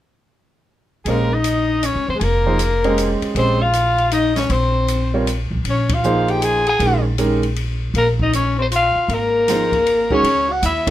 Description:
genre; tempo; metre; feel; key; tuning
modal jazz; 157 BPM; 3/4; swing 64% on 8ths; Bb dorian; A4 = 440 Hz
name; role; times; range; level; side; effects
growling soprano saxophone; melody; 1.1-10.9 s; Ab4 to Ab5; -19 LUFS; equal; none
breathy tenor saxophone; second line; 1.1-10.9 s; Ab3 to Ab4; -22 LUFS; left 5 dB; none
clear grand piano; accompaniment; 1.1-7.4, 9.5-10.9 s; Eb3 to Eb5; -20 LUFS; right 3 dB; none
upright bass; bass; 1.1-10.9 s; F1 to F2; -21 LUFS; equal; none
open jazz drum kit; drums; 1.1-10.9 s; hi-hat, kick drum, ride cymbal, snare drum; -27 LUFS; left 1 dB; none
room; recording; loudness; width
moderate club reverb, RT60 0.5 s; none; -15 LUFS; side -13 dB against mid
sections
0.0-1.1 A section; 1.1-10.2 B section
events
band accent 5.8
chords
0.0 N.C.; 1.1 Bbm9; 9.1 Ab69; 10.2 C#sus4

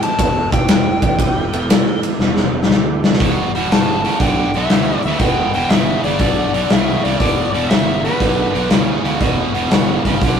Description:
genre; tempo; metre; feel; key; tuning
blues rock power trio and southern rock; 120 BPM; 4/4; swing 67% on 8ths; E minor; A4 = 440 Hz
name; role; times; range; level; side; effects
overdriven slide guitar; melody; 0.0-8.7 s; B4 to A5; -21 LUFS; left 2 dB; none
overdriven tonewheel organ; sustained chords; 0.0-3.2 s; B3 to A4; -26 LUFS; right 4 dB; slow rotary speaker, chorus vibrato
big rock drum kit; drums; 0.0-10.4 s; hi-hat, kick drum, ride cymbal, snare drum; -16 LUFS; left 1 dB; none
fuzz fingered electric bass; bass; 0.2-10.4 s; E1 to D2; -24 LUFS; right 1 dB; overdrive
distorted electric guitar; riff; 3.2-10.4 s; E2 to D3; -19 LUFS; right 2 dB; overdrive
room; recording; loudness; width
light reverb; rough rehearsal-room recording; -13 LUFS; side -7 dB against mid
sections
0.0-3.2 A section; 3.2-10.4 B section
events
electric slide guitar solo 0.0-3.2; drum fill 2.2-3.2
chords
0.0 Em; 3.2 Em7

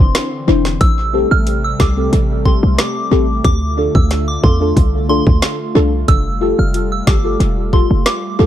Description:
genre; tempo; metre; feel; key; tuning
dancehall; 91 BPM; 4/4; straight; A minor; A4 = 440 Hz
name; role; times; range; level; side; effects
warm analog pad; sustained chords; 0.0-8.5 s; C3 to F4; -24 LUFS; equal; chorus, sidechain pumping
short 808-style bass; bass; 0.0-8.5 s; E1 to E2; -15 LUFS; equal; none
island pop drum kit; drums; 0.1-8.2 s; hi-hat, kick drum, rim click, snare drum; -15 LUFS; equal; tape echo
deep mellow chord stab; accompaniment; 0.5-8.5 s; C4 to C5; -19 LUFS; left 2 dB; chorus, tape echo
soft synth bell; melody; 0.8-8.5 s; C6 to F6; -23 LUFS; right 2 dB; chorus, phaser, tape echo
room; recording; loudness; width
digital ambience; echo-heavy mix; -12 LUFS; side -11 dB against mid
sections
0.0-8.5 A section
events
none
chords
0.0 Cadd9; 0.8 Am7; 3.4 Dm; 6.1 Fadd9

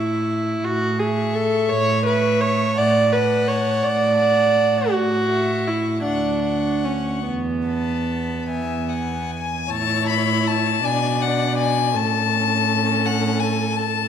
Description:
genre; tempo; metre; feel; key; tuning
classical, slow romantic movement for string quartet; 48-58 BPM (dotted quarters); 6/8; rubato; A major; A4 = 440 Hz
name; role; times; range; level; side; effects
rich violin; melody; 0.0-14.1 s; E5 to C#6; -25 LUFS; left 10 dB; none
rich violin; second line; 0.0-14.1 s; A4 to A5; -30 LUFS; left 4 dB; none
rich viola; accompaniment; 0.0-14.1 s; B3 to D5; -21 LUFS; right 1 dB; none
warm cello; bass; 0.0-14.1 s; D2 to B2; -24 LUFS; right 3 dB; none
room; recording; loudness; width
moderate concert hall reverb, RT60 2.1 s; none; -18 LUFS; side -8 dB against mid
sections
0.0-9.7 A section; 9.7-14.1 B section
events
none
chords
0.0 A; 2.8 D/A; 4.9 A; 6.0 Dmaj7; 7.3 Esus4; 9.7 A; 10.8 Bm6; 11.9 A

